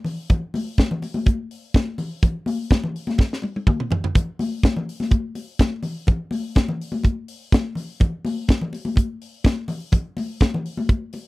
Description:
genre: disco.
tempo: 125 BPM.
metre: 4/4.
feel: straight.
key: none.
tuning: none.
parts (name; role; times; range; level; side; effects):
congas; percussion; 0.0-11.3 s; none; -26 LUFS; left 3 dB; none.
tight funk drum kit; drums; 0.1-11.2 s; hi-hat, kick drum, snare drum, toms; -17 LUFS; equal; none.
room: little or no reverb.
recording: dry, close 1970s-style studio recording.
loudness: -20 LUFS.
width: side -20 dB against mid.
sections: 0.0-11.3 A section.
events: drum fill 3.2-4.2.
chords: none.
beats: | 0.29 0.78 1.26 1.74 | 2.22 2.71 3.19 3.67 | 4.15 4.63 5.11 5.59 | 6.08 6.56 7.04 7.52 | 8.00 8.48 8.97 9.45 | 9.93 10.41 10.89.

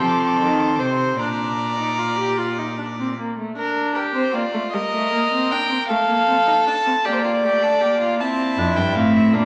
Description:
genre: classical, baroque-style fugue for string quartet.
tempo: 52 BPM (dotted quarters).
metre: 6/8.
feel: straight.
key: Bb major.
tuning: A4 = 440 Hz.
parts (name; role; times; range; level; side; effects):
warm violin; melody; 0.0-9.4 s; Bb4 to D6; -25 LUFS; equal; none.
warm violin; second line; 0.0-9.4 s; D4 to D5; -25 LUFS; equal; none.
warm viola; accompaniment; 0.0-9.4 s; G3 to G4; -26 LUFS; equal; none.
rich cello; bass; 0.0-3.1, 8.6-9.4 s; F2 to F3; -24 LUFS; equal; none.
room: wet recital hall reverb, RT60 1.6 s.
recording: none.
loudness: -20 LUFS.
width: mono.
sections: 0.0-3.6 A section; 3.6-9.4 B section.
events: none.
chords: 0.0 F7; 1.2 Bb; 3.6 Bb/D; 4.7 Cm/G; 5.9 F7/A; 7.0 Bb; 8.2 F.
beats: 0.01 | 1.19 2.38 | 3.56 4.73 | 5.89 7.04 | 8.20 9.34.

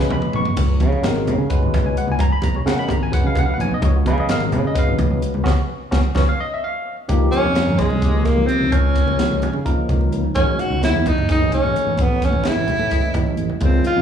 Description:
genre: electric jazz fusion.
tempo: 258 BPM (eighths).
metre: 7/8.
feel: straight.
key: Db mixolydian, Db lydian from 7.1 s.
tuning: A4 = 440 Hz.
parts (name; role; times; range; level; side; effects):
barky tine electric piano; accompaniment; 0.0-14.0 s; Eb3 to Db6; -24 LUFS; left 2 dB; overdrive, phaser, slapback echo.
fingered electric bass; bass; 0.0-14.0 s; F#1 to Db3; -20 LUFS; equal; none.
crisp fusion drum kit; drums; 0.1-14.0 s; hi-hat, kick drum, snare drum, splash cymbal, toms; -21 LUFS; equal; none.
congas; percussion; 0.1-14.0 s; none; -27 LUFS; right 2 dB; slapback echo.
breathy tenor saxophone; melody; 7.3-14.0 s; Ab3 to F#4; -20 LUFS; equal; slapback echo.
room: light reverb, studio reverb.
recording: live gig heard through the venue's PA, club reverb, small room ambience.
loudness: -16 LUFS.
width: side -8 dB against mid.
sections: 0.0-7.1 A section; 7.1-14.0 B section.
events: drum fill 0.0-0.6, 6.5-7.1; band accent 5.5-7.1.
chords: 0.0 Db7sus4; 7.1 Db; 10.3 A6.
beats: 0.11 0.34 | 0.58 0.81 1.04 1.27 1.51 1.74 1.97 | 2.20 2.44 2.67 2.90 3.13 3.37 3.60 | 3.83 4.06 4.30 4.53 4.76 4.99 5.23 | 5.46 5.69 5.92 6.16 6.39 6.62 6.86 | 7.09 7.32 7.55 7.79 8.02 8.25 8.48 | 8.72 8.95 9.19 9.42 9.65 9.88 10.12 | 10.35 10.58 10.82 11.05 11.28 11.52 11.75 | 11.98 12.21 12.45 12.68 12.91 13.15 13.38 | 13.61 13.85.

